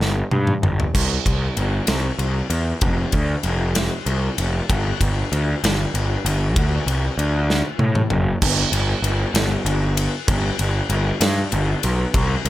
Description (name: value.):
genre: quiet-loud alternative rock.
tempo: 64 BPM (dotted quarters).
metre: 6/8.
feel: straight.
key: unclear.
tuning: A4 = 440 Hz.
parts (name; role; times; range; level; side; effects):
fuzz picked electric bass; bass; 0.0-12.5 s; F1 to A2; -20 LUFS; equal; overdrive.
big rock drum kit; drums; 0.0-12.5 s; crash cymbal, kick drum, ride cymbal, snare drum, toms; -22 LUFS; equal; none.
room: little or no reverb.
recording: none.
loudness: -18 LUFS.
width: side -14 dB against mid.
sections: 0.9-8.4 A section; 8.4-12.5 B section.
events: drum fill 0.0-0.9, 7.5-8.4.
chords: none.